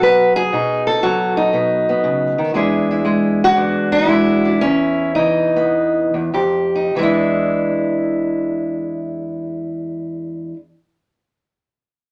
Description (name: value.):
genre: acoustic country blues, solo or duo.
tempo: 94-119 BPM.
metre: 4/4.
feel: swing 68% on 8ths.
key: E mixolydian.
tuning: A4 = 440 Hz.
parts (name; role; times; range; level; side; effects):
fingerpicked steel-string acoustic guitar; solo; 0.0-10.6 s; E2 to B4; -17 LUFS; equal; none.
room: moderate small room reverb, RT60 0.5 s.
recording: none.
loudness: -17 LUFS.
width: mono.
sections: 0.0-7.0 A section; 7.0-12.1 B section.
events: slowing down 2.5-7.0.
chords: 0.0 B7; 2.5 E7; 6.3 Fsus2; 7.0 E7.